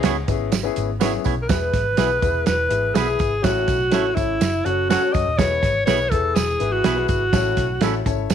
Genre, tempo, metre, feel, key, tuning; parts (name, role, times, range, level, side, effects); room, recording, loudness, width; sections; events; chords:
uptempo 1960s-style soul; 123 BPM; 4/4; straight; E major; A4 = 439 Hz
warm upright piano; accompaniment; 0.0-8.3 s; G#2 to C#5; -26 LUFS; left 12 dB
semi-hollow electric guitar; stabs; 0.0-7.9 s; A3 to C#5; -28 LUFS; right 10 dB
vintage muted picked electric bass; bass; 0.0-8.3 s; D#1 to F#2; -26 LUFS; left 1 dB
warm soul drum kit; drums; 0.0-8.3 s; hi-hat, kick drum, snare drum; -22 LUFS; right 4 dB
congas; percussion; 0.0-1.4 s; -38 LUFS; left 11 dB
tambourine; percussion; 0.0-8.3 s; -37 LUFS; right 16 dB
bright alto saxophone; melody; 1.4-8.0 s; E4 to D#5; -21 LUFS; equal
moderate plate reverb, RT60 1.0 s; 1960s-style stereo with parts hard left and right; -18 LUFS; side -8 dB against mid
0.0-1.5 A section; 1.5-8.3 B section
0.0 E6/G#; 1.5 E; 3.4 A; 4.4 F#m; 5.4 E; 7.3 A